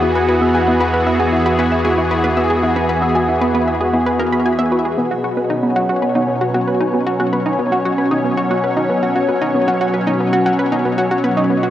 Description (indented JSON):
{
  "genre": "ambient, sequencer-driven space music",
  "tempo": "115 BPM",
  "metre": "4/4",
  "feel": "straight",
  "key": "unclear",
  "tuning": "A4 = 439 Hz",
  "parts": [
    { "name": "lush unison pad", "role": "sustained chords", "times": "0.0-11.7 s", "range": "B2 to C#5", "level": "-16 LUFS", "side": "equal", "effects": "chorus, phaser, cassette tape, shimmer reverb" },
    { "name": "warbly dusty pluck", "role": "arpeggios", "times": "0.0-11.7 s", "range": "B3 to F#4", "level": "-22 LUFS", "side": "right 1 dB", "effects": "chorus, auto-pan, cassette tape, ping-pong delay, shimmer reverb" },
    { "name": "analog pluck", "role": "riff", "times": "0.0-11.7 s", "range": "B3 to B5", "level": "-20 LUFS", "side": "equal", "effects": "chorus, cassette tape, ping-pong delay, shimmer reverb" },
    { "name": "warm sub bass", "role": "bass", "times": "0.0-5.0 s", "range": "E2", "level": "-25 LUFS", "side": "equal", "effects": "none" },
    { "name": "pulsing gated texture", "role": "texture", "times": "0.0-11.7 s", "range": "B3 to E5", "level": "-30 LUFS", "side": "equal", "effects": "none" }
  ],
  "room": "wet spring reverb, RT60 1.5 s, digital ambience",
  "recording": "home recording on cassette",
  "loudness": "-14 LUFS",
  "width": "side -12 dB against mid",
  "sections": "0.0-5.0 A section; 5.0-11.7 A section",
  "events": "none",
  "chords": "0.0 E; 5.0 Bsus2",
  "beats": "0.28 | 0.81 1.33 1.85 2.37 | 2.89 3.42 3.94 4.46 | 4.98 5.50 6.02 6.54 | 7.07 7.59 8.11 8.63 | 9.15 9.68 10.20 10.72 | 11.24"
}